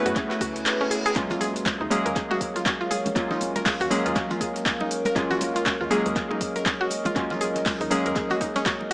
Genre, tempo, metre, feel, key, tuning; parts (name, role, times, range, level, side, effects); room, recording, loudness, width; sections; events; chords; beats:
deep house; 120 BPM; 4/4; swing 60% on 16ths; Eb minor; A4 = 440 Hz
deep dark ambient pad; sustained chords; 0.0-8.9 s; Gb3 to F5; -33 LUFS; equal; chorus, built-in reverb, sidechain pumping
warm analog keys; stabs; 0.0-8.9 s; Gb3 to Cb5; -27 LUFS; equal; chorus, sidechain pumping, analog delay
warbly tape-like pad; texture; 0.0-8.9 s; Gb4 to Db5; -35 LUFS; equal; chorus, built-in reverb, sidechain pumping
mallet-like synth pluck; arpeggios; 0.1-8.9 s; Db4 to Bb4; -28 LUFS; equal; chorus, sidechain pumping, analog delay
woody FM bass; bass; 0.1-8.1 s; Eb1 to Gb2; -36 LUFS; equal; sidechain pumping
deep house drum kit; drums; 0.1-8.9 s; cabasa, handclaps, hi-hat, rim click; -29 LUFS; equal; overdrive, tape echo
breakbeat sampler-style drum kit; drums; 0.2-8.9 s; hi-hat, snare drum, tambourine; -38 LUFS; equal
electronic kick drum; drums; 0.2-8.8 s; -30 LUFS; equal; overdrive
reverse cymbal; sound effects; 0.5-1.2 s; -37 LUFS; right 1 dB
congas; percussion; 1.3-8.9 s; -35 LUFS; equal
light reverb, digital ambience; echo-heavy mix, small speaker sound; -22 LUFS; side -24 dB against mid
0.0-8.9 A section
drum fill 0.4-1.2; reverse cymbal 0.5-1.2
0.0 Gbm11; 1.2 Ebm11
0.16 0.66 | 1.16 1.66 2.16 2.66 | 3.16 3.66 4.16 4.66 | 5.16 5.66 6.16 6.66 | 7.16 7.66 8.16 8.66